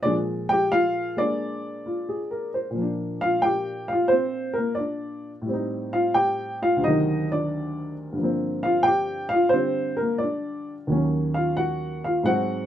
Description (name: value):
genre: solo jazz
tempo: 89 BPM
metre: 4/4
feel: swing 68% on 8ths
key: Bb major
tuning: A4 = 440 Hz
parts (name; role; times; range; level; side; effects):
- dark upright piano; solo; 0.0-12.7 s; D2 to G5; -22 LUFS; equal; none
room: light reverb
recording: minimal, uncompressed stereo recording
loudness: -22 LUFS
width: side -10 dB against mid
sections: 0.0-2.7 A section; 2.7-12.7 B section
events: none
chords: 0.0 Bb7; 2.7 Bb; 5.5 Am7b5; 6.8 D7b9; 8.2 Gm7; 10.9 Ebm7